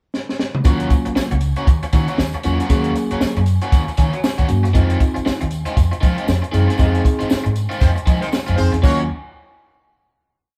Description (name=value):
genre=funk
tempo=117 BPM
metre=4/4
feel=swing 60% on 16ths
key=Eb dorian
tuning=A4 = 443 Hz
part: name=compact cocktail drum kit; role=drums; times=0.1-9.0 s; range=hi-hat, kick drum, snare drum, toms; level=-20 LUFS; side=equal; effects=none
part: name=tine electric piano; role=stabs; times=0.6-9.1 s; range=Gb3 to Ab4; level=-25 LUFS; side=equal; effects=none
part: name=tambourine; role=percussion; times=0.6-9.1 s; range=none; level=-43 LUFS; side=equal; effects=none
part: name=overdriven electric guitar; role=accompaniment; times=0.7-9.0 s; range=Eb3 to Ab4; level=-28 LUFS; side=equal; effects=spring reverb
part: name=vintage muted fingered electric bass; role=bass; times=0.7-9.1 s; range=Db2 to F3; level=-22 LUFS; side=equal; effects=none
part: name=clear horn section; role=second line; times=7.8-9.0 s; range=Ab3 to Db5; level=-27 LUFS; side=equal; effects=none
room=moderate small room reverb, RT60 0.5 s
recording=band playing live in one room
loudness=-18 LUFS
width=mono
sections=0.0-0.7 pickup bar; 0.7-8.8 groove; 8.8-10.6 final chord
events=drum fill 0.1-0.7; band accent 6.8-8.8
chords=0.0 N.C.; 0.7 Ebm7; 4.8 Fm7; 8.8 Ebm7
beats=0.14 | 0.65 1.16 1.68 2.19 | 2.70 3.21 3.73 4.24 | 4.75 5.26 5.77 6.29 | 6.80 7.31 7.82 8.33 | 8.84